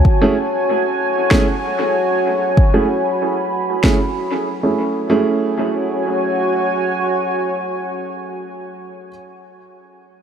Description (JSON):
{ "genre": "ambient dub", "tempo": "95 BPM", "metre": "4/4", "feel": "straight", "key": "F# minor", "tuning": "A4 = 439 Hz", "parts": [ { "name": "deep dark ambient pad", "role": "sustained chords", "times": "0.0-8.4 s", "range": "F#4 to B5", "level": "-19 LUFS", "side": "equal", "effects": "chorus, built-in reverb" }, { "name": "electronic kick drum", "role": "drums", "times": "0.0-4.0 s", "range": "none", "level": "-15 LUFS", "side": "equal", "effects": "none" }, { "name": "warm upright piano", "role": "stabs", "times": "0.2-9.1 s", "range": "A3 to G#4", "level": "-20 LUFS", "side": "right 2 dB", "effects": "low-pass filter, dub echo" }, { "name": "electronic snare drum", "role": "drums", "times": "1.3-4.0 s", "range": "none", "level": "-24 LUFS", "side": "equal", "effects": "dub echo" } ], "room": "moderate huge ambient reverb, RT60 7.0 s", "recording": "none", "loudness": "-15 LUFS", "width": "side -8 dB against mid", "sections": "0.0-5.1 A section; 5.1-7.6 B section", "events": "filter sweep on upright piano 0.0-5.1", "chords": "0.0 F#m9" }